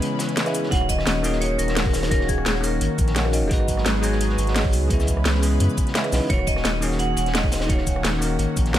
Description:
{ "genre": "liquid drum and bass", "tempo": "172 BPM", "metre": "4/4", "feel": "straight", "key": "Eb phrygian", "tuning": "A4 = 440 Hz", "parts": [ { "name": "bell-like tine electric piano", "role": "accompaniment", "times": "0.0-8.8 s", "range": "Db3 to Db5", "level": "-26 LUFS", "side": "equal", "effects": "phaser, dub echo" }, { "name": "lush unison pad", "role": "sustained chords", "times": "0.0-8.8 s", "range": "Eb3 to Cb5", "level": "-29 LUFS", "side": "equal", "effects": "chorus, sidechain pumping" }, { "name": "crunchy breakbeat drum kit", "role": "drums", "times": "0.0-8.8 s", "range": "hi-hat, snare drum", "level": "-33 LUFS", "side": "equal", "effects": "high-pass filter on hats, studio reverb, high-pass filter on snare, high-pass filter on room" }, { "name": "garage drum kit", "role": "drums", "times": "0.0-8.8 s", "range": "cabasa, hi-hat, rim click, snare drum", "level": "-26 LUFS", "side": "equal", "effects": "studio reverb" }, { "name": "vibraphone with medium hard mallets", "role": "melody", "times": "0.7-3.3, 6.3-8.0 s", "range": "Ab4 to Gb5", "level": "-28 LUFS", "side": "left 1 dB", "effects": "ping-pong delay" }, { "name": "warm sub bass", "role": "bass", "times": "0.7-8.8 s", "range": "Eb1 to Gb2", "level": "-24 LUFS", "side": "equal", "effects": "none" }, { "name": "electronic kick drum", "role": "drums", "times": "0.7-8.6 s", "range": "none", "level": "-23 LUFS", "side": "equal", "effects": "studio reverb" } ], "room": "small room ambience", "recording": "none", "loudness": "-19 LUFS", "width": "side -12 dB against mid", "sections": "0.0-8.8 A section", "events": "break 0.0-0.7", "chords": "0.0 Dbm7; 0.7 Ebm7; 3.5 Abm7; 4.9 Dbm7; 6.3 Ebm7", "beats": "0.02 0.37 | 0.72 1.07 1.42 1.76 | 2.11 2.46 2.81 3.16 | 3.51 3.86 4.21 4.56 | 4.91 5.25 5.60 5.95 | 6.30 6.65 7.00 7.35 | 7.70 8.04 8.39 8.74" }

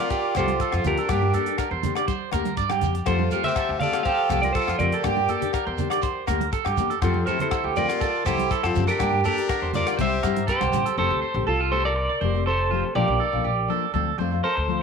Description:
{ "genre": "highlife guitar band", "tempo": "121 BPM", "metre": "4/4", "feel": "straight", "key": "F major", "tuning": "A4 = 441 Hz", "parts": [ { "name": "clean electric guitar", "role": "melody", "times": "0.0-14.8 s", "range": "F4 to F5", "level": "-26 LUFS", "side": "equal", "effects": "harmonic tremolo" }, { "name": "brilliant trumpet", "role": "second line", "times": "0.0-10.5 s", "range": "C4 to A4", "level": "-32 LUFS", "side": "left 11 dB", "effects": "none" }, { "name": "nylon-string guitar", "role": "accompaniment", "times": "0.0-14.8 s", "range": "F3 to G4", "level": "-30 LUFS", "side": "left 15 dB", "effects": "none" }, { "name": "electric guitar at the edge of break-up", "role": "arpeggios", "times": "0.0-14.8 s", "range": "F4 to D5", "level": "-26 LUFS", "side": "right 10 dB", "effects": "phaser, tape echo" }, { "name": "shekere", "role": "percussion", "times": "0.0-10.9 s", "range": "none", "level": "-35 LUFS", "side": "right 3 dB", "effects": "none" }, { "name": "tight funk drum kit", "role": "drums", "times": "0.1-11.0 s", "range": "hi-hat, kick drum, rim click", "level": "-32 LUFS", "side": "left 3 dB", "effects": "none" }, { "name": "agogo bells", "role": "percussion", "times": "0.3-10.7 s", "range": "none", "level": "-34 LUFS", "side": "left 12 dB", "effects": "none" }, { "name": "upright bass", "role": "bass", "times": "0.4-14.8 s", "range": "F1 to G2", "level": "-27 LUFS", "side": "left 1 dB", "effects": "none" }, { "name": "congas", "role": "percussion", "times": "0.5-10.9 s", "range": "none", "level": "-33 LUFS", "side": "right 10 dB", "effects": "none" } ], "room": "wet spring reverb, RT60 1.1 s, small room reverb", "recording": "1960s-style stereo with parts hard left and right", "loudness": "-21 LUFS", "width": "side -6 dB against mid", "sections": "0.0-11.0 A section; 11.0-14.8 B section", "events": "none", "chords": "0.0 Fadd9; 1.1 Gm; 3.1 Fadd9; 5.0 Gm; 7.0 Fadd9; 9.0 Gm; 10.0 C; 11.0 Fadd9; 13.0 Bb; 13.9 Dm7", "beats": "0.11 0.60 | 1.09 1.59 2.08 2.58 | 3.07 3.57 4.06 4.55 | 5.05 5.54 6.04 6.53 | 7.03 7.52 8.01 8.51 | 9.00 9.50 9.99 10.49 | 10.98 11.47 11.97 12.46 | 12.96 13.45 13.95 14.44" }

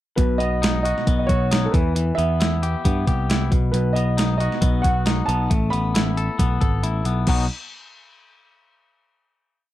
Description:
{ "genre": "indie rock", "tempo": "136 BPM", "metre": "4/4", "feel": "straight", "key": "B mixolydian", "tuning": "A4 = 438 Hz", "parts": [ { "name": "warm upright piano", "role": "melody", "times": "0.2-6.6 s", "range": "A4 to B5", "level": "-26 LUFS", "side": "right 3 dB", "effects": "none" }, { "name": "twangy electric guitar", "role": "riff", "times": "0.2-7.5 s", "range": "B2 to A4", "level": "-26 LUFS", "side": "left 6 dB", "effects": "none" }, { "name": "picked electric bass", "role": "bass", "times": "0.2-7.5 s", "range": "G#1 to G2", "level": "-22 LUFS", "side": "equal", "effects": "none" }, { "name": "crisp 8-bit digital drum machine", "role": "drums", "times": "0.2-7.4 s", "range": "crash cymbal, hi-hat, kick drum, snare drum", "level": "-22 LUFS", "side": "right 1 dB", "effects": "overdrive" } ], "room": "light reverb", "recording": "dark, warm production", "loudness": "-18 LUFS", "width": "side -14 dB against mid", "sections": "0.2-7.3 interlude; 7.3-9.0 final chord", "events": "break 6.8-7.3", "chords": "0.2 B; 1.7 Em; 3.5 B; 5.5 Asus2; 7.3 B", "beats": "| 0.18 0.62 1.07 1.51 | 1.96 2.40 2.85 3.29 | 3.74 4.18 4.62 5.07 | 5.51 5.95 6.39 6.83 | 7.27" }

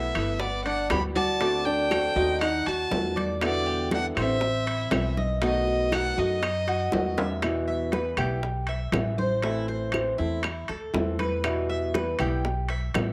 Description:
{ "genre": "latin, Cuban son and guajira", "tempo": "120 BPM", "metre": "4/4", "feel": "straight", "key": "E minor", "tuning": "A4 = 440 Hz", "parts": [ { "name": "rich violin", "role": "melody", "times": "0.0-7.2 s", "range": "D5 to B5", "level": "-32 LUFS", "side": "equal", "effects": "cassette tape" }, { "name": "flamenco guitar", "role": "second line", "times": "0.0-7.2 s", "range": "B3 to G4", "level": "-34 LUFS", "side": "equal", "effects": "cassette tape" }, { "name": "flamenco guitar", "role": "accompaniment", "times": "0.0-13.1 s", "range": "B2 to F#4", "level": "-32 LUFS", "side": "equal", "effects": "cassette tape" }, { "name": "Cuban tres", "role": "arpeggios", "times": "0.0-13.1 s", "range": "D4 to E5", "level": "-34 LUFS", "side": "equal", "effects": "cassette tape" }, { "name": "upright bass", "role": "bass", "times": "0.0-13.1 s", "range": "G1 to F#2", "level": "-34 LUFS", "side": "equal", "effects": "none" }, { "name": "claves", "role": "percussion", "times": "0.2-13.1 s", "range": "none", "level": "-39 LUFS", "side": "equal", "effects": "none" }, { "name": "congas", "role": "percussion", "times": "0.2-13.1 s", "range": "none", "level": "-36 LUFS", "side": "equal", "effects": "none" }, { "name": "timbales", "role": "percussion", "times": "0.2-13.1 s", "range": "none", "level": "-36 LUFS", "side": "equal", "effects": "none" }, { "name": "bongos", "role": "percussion", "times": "0.4-13.1 s", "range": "none", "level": "-35 LUFS", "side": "equal", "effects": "none" } ], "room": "moderate spring reverb, RT60 1.4 s, small room ambience", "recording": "home recording on cassette", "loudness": "-26 LUFS", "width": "mono", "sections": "0.0-7.4 A section; 7.4-13.1 B section", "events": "drum fill 6.9-7.4", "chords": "0.4 Gmaj7; 1.4 D7; 2.4 B7/D#; 3.4 Em7; 4.4 Amadd9; 5.4 B7; 7.4 Em; 9.4 Am; 11.4 Em", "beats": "0.41 0.91 | 1.41 1.91 2.42 2.92 | 3.42 3.92 4.42 4.92 | 5.42 5.92 6.43 6.93 | 7.43 7.93 8.43 8.93 | 9.44 9.94 10.44 10.94 | 11.44 11.95 12.45 12.95" }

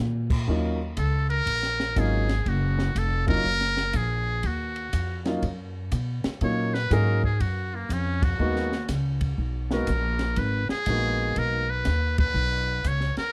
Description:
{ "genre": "jazz, small-group swing and bop", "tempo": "121 BPM", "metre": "4/4", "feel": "swing 66% on 8ths", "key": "Eb minor", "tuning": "A4 = 440 Hz", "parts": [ { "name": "upright bass", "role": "bass", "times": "0.0-13.2 s", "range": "F1 to Cb3", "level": "-29 LUFS", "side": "equal", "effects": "none" }, { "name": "compact cocktail drum kit", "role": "drums", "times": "0.3-13.3 s", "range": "crash cymbal, hi-hat, kick drum, ride cymbal, snare drum", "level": "-33 LUFS", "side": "equal", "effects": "none" }, { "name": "warm upright piano", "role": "accompaniment", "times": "0.5-11.6 s", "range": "Gb3 to Ab4", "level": "-31 LUFS", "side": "equal", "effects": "none" }, { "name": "trumpet with metal mute", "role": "melody", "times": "1.0-13.3 s", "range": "Bb3 to Db5", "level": "-30 LUFS", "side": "equal", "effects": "none" } ], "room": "light reverb", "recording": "none", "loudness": "-26 LUFS", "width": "mono", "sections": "0.5-13.3 A section", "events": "band accent 3.2, 8.1, 12.1", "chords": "0.5 Ebm9; 8.4 Abm9", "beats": "| 0.48 0.97 1.47 1.96 | 2.45 2.95 3.44 3.94 | 4.43 4.93 5.42 5.92 | 6.42 6.91 7.41 7.90 | 8.40 8.89 9.39 9.88 | 10.38 10.87 11.36 11.86 | 12.35 12.85" }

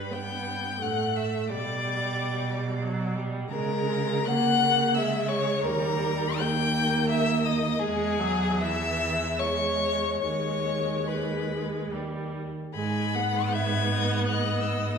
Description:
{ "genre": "classical, slow romantic movement for string quartet", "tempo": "68-91 BPM", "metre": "3/4", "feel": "rubato", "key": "G# minor from 3.5 s", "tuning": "A4 = 440 Hz", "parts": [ { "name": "rich violin", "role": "melody", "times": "0.0-15.0 s", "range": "G#5 to G#6", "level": "-31 LUFS", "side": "left 6 dB", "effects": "none" }, { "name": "rich violin", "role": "second line", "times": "0.0-15.0 s", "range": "G#4 to G#5", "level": "-30 LUFS", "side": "left 3 dB", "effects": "none" }, { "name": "rich viola", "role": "accompaniment", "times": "0.0-15.0 s", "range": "E3 to B3", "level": "-30 LUFS", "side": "right 2 dB", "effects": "none" }, { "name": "rich cello", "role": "bass", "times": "0.0-15.0 s", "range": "D#2 to C#3", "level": "-30 LUFS", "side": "right 3 dB", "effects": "none" } ], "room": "wet recital hall reverb, RT60 1.4 s", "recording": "heard from further back in the room", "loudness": "-24 LUFS", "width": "side -6 dB against mid", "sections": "0.0-12.7 A section; 12.7-15.0 B section", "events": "none", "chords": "0.0 G; 1.5 G/B; 3.5 F#9/C#; 5.6 D#; 7.8 E; 10.2 G#m/D#; 11.9 D#; 12.7 G#m", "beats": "0.13 0.83 | 1.50 2.17 2.83 | 3.51 4.27 4.96 | 5.65 6.41 7.12 | 7.82 8.62 9.40 | 10.23 11.08 11.91 | 12.73 13.53 14.26 | 14.98" }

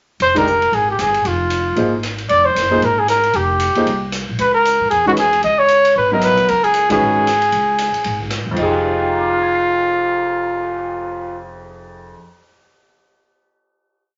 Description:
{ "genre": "modal jazz", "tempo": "229 BPM", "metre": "4/4", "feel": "swing 60% on 8ths", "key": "F dorian", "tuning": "A4 = 441 Hz", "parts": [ { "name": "warm trumpet", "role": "melody", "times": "0.2-11.4 s", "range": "F4 to Eb5", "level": "-17 LUFS", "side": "equal", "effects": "none" }, { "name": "upright bass", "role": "bass", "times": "0.2-12.1 s", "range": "F1 to Ab2", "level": "-29 LUFS", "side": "equal", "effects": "none" }, { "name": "swinging big-band drum kit", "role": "drums", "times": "0.2-10.6 s", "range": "crash cymbal, cymbal swell, hi-hat, kick drum, ride cymbal, rim click, snare drum", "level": "-30 LUFS", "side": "equal", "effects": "none" }, { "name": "warm concert grand piano", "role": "accompaniment", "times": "0.3-12.5 s", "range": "F2 to C7", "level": "-23 LUFS", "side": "equal", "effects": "none" } ], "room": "moderate club reverb, RT60 0.7 s", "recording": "nothing above 7.6 kHz", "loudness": "-16 LUFS", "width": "mono", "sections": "0.2-8.6 A section; 8.6-10.7 final chord", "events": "band accent 0.3, 6.9", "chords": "0.2 Fmadd9; 4.4 Dbm9; 8.6 Fm9", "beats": "| 0.20 0.46 0.72 0.98 | 1.24 1.51 1.77 2.03 | 2.29 2.55 2.81 3.07 | 3.34 3.60 3.86 4.12 | 4.38 4.64 4.91 5.17 | 5.43 5.69 5.96 6.22 | 6.48 6.74 7.00 7.27 | 7.53 7.79 8.05 8.31 | 8.58 8.84 9.10 9.36 | 9.62 9.88 10.14 10.40" }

